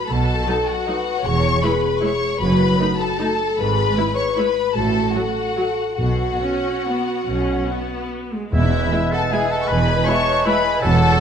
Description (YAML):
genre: classical, orchestral ballroom waltz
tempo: 134-175 BPM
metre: 3/4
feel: rubato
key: E major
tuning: A4 = 439 Hz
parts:
  - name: rich chamber violin section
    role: melody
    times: 0.0-11.2 s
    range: E5 to C#6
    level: -25 LUFS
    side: left 6 dB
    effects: none
  - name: rich chamber violin section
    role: second line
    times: 0.0-11.2 s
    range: E4 to C#5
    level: -26 LUFS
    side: left 4 dB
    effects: none
  - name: mellow French horn section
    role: sustained chords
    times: 0.1-10.6 s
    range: G#3 to B4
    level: -25 LUFS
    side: left 2 dB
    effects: none
  - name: rich studio double bass section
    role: bass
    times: 0.1-11.1 s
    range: E1 to B1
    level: -24 LUFS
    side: right 3 dB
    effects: none
  - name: warm chamber cello section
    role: bass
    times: 0.1-11.1 s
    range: E2 to B2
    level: -24 LUFS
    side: right 3 dB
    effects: none
  - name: rich chamber viola section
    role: accompaniment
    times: 0.5-10.5 s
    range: F#3 to F#4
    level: -27 LUFS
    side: right 1 dB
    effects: none
  - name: timpani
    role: percussion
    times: 6.0-9.1 s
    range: E2 to B2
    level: -24 LUFS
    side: left 2 dB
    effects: none
  - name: clear oboe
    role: second line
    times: 8.5-11.2 s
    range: E4 to C#5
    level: -25 LUFS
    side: right 2 dB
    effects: none
  - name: dark clarinet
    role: second line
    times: 8.5-11.2 s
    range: B4 to C#5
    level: -30 LUFS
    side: left 2 dB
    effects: none
  - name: small flute group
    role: second line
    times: 8.5-11.2 s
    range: B4 to A5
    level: -27 LUFS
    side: left 4 dB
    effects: none
  - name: clear bassoon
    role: accompaniment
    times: 8.5-11.2 s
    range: F#3 to G#3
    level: -25 LUFS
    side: right 2 dB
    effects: none
  - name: dark trumpet section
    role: stabs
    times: 8.9-10.6 s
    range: E5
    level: -30 LUFS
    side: left 1 dB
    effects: none
room: moderate scoring stage reverb, RT60 1.6 s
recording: dark, warm production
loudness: -17 LUFS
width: side -7 dB against mid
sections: 0.0-8.5 A section; 8.5-11.2 B section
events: none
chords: 0.1 B7; 1.2 E; 2.4 D#dim/F#; 3.6 E/G#; 4.8 F#m/A; 6.0 B5; 8.5 E